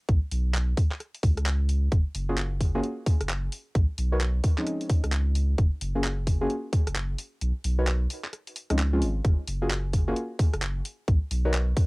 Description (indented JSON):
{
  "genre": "UK garage, two-step garage",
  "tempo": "131 BPM",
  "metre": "4/4",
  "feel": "swing 62% on 16ths",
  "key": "F# major",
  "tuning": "A4 = 441 Hz",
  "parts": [
    { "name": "saturated sub bass", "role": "bass", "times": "0.1-11.7 s", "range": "F#1 to C#2", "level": "-26 LUFS", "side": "equal", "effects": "tube saturation" },
    { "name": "electronic kick drum", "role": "drums", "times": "0.1-11.9 s", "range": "none", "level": "-23 LUFS", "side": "equal", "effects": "cassette tape" },
    { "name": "garage drum kit", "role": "drums", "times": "0.1-11.9 s", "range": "handclaps, hi-hat, rim click", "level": "-33 LUFS", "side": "equal", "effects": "cassette tape" },
    { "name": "deep mellow chord stab", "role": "stabs", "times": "2.3-11.5 s", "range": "E#3 to C#5", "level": "-30 LUFS", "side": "equal", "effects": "chorus, cassette tape, analog delay" }
  ],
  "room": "little or no reverb",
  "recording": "home recording on cassette",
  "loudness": "-24 LUFS",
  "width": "side -26 dB against mid",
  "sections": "0.0-11.9 A section",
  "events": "kick drops out 7.4-9.2",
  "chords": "0.0 N.C.; 1.9 F#maj9; 3.5 Bmaj9; 4.4 C#maj9; 5.6 F#maj9; 7.2 Bmaj9; 8.1 C#maj7; 9.2 F#maj9; 10.8 Bmaj9",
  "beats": "| 0.09 0.55 1.00 1.46 | 1.92 2.38 2.83 3.29 | 3.75 4.21 4.67 5.12 | 5.58 6.04 6.50 6.96 | 7.42 7.87 8.33 8.79 | 9.25 9.71 10.16 10.62 | 11.08 11.54"
}